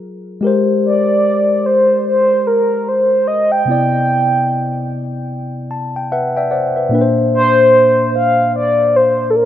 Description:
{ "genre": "R&B", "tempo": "74 BPM", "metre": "4/4", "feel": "swing 61% on 16ths", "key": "unclear", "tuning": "A4 = 441 Hz", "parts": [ { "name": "mellow tine electric piano", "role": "accompaniment", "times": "0.0-9.5 s", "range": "Bb2 to A5", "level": "-17 LUFS", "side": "left 2 dB", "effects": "none" }, { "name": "mellow horn-like synth lead", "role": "melody", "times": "0.8-9.5 s", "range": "A4 to G5", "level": "-12 LUFS", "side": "equal", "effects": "chorus" } ], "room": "wet plate reverb, RT60 3.4 s", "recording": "rough home demo mix", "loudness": "-12 LUFS", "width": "side -11 dB against mid", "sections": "0.0-9.5 A section", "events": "tine electric piano fill 5.3-6.9", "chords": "0.4 Abmaj9; 3.7 Cmaj9; 6.9 Bbadd9" }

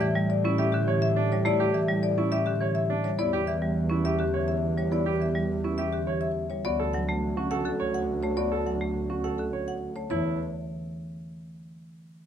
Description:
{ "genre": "classical, minimalist pattern music", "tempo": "104 BPM", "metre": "3/4", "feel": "straight", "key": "unclear", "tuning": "A4 = 437 Hz", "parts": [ { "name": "marimba with medium hard mallets", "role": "melody", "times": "0.0-10.4 s", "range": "G4 to F#5", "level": "-31 LUFS", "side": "left 8 dB", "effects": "none" }, { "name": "mellow hollow wooden-headed alto flute", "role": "second line", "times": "0.0-9.9 s", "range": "F#4 to G4", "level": "-34 LUFS", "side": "right 5 dB", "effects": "none" }, { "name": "marimba with hard mallets", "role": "accompaniment", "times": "0.0-10.4 s", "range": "D3 to C#4", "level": "-30 LUFS", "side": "right 1 dB", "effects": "none" }, { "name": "clear baby grand piano", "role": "arpeggios", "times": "0.0-10.4 s", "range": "D4 to C#5", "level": "-32 LUFS", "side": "right 4 dB", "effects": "none" }, { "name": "rich studio double bass section", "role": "bass", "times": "0.0-10.4 s", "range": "D2 to A2", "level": "-31 LUFS", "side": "equal", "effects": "none" } ], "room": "light reverb", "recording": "close, detailed microphones", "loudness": "-24 LUFS", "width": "side -9 dB against mid", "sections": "0.0-10.1 A section; 10.1-11.8 B section", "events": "none", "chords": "0.0 A7sus4; 3.2 Em; 6.6 D; 10.1 N.C." }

